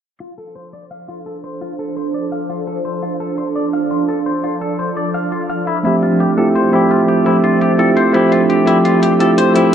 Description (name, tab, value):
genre	liquid drum and bass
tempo	170 BPM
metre	4/4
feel	straight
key	unclear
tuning	A4 = 440 Hz
part	shimmering ambient pad	sustained chords	1.3-9.7 s	F3 to E5	-20 LUFS	right 2 dB	chorus, built-in reverb
part	clean electric guitar	arpeggios	0.2-9.7 s	E4 to F5	-22 LUFS	left 4 dB	low-pass filter, tape echo
part	electronic hi-hat	drums	0.2-9.6 s	none	-32 LUFS	left 2 dB	low-pass filter on hats
part	bell-like tine electric piano	accompaniment	5.8-9.7 s	F3 to E5	-12 LUFS	right 1 dB	tape echo
room	moderate lush hall reverb, RT60 1.6 s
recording	low-pass filter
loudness	-13 LUFS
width	side -8 dB against mid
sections	0.2-9.7 A section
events	filter sweep on drum 0.2-9.7; filter sweep on clean electric guitar 0.2-9.7; filter sweep 0.2-9.7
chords	0.2 F6; 5.7 Dm11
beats	| 0.20 0.56 0.91 1.26 | 1.61 1.97 2.32 2.67 | 3.03 3.38 3.73 4.09 | 4.44 4.79 5.14 5.50 | 5.85 6.20 6.56 6.91 | 7.26 7.62 7.97 8.32 | 8.67 9.03 9.38 9.73